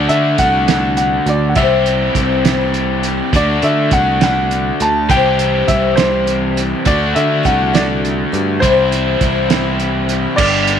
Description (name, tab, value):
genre	folk rock and heartland rock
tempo	68 BPM (dotted quarters)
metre	6/8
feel	straight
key	C lydian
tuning	A4 = 439 Hz
part	warm baby grand piano	melody	0.0-10.8 s	C5 to A5	-17 LUFS	equal	none
part	picked twelve-string acoustic guitar	accompaniment	0.0-10.8 s	C3 to D5	-21 LUFS	left 7 dB	none
part	overdriven electric guitar	riff	0.0-10.8 s	G2 to G4	-18 LUFS	equal	none
part	picked electric bass	bass	0.0-10.8 s	G1 to D3	-19 LUFS	equal	none
part	cloth-damped thuddy drum kit	drums	0.1-10.8 s	crash cymbal, hi-hat, kick drum, snare drum	-17 LUFS	right 4 dB	none
room	light reverb, small room ambience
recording	1960s-style stereo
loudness	-12 LUFS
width	side -8 dB against mid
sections	0.0-10.4 A section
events	none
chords	0.0 D; 1.6 C; 3.3 D; 5.1 C; 6.9 D; 8.6 C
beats	0.69 | 1.57 2.45 | 3.34 4.22 | 5.10 5.98 | 6.87 7.75 | 8.63 9.51 | 10.39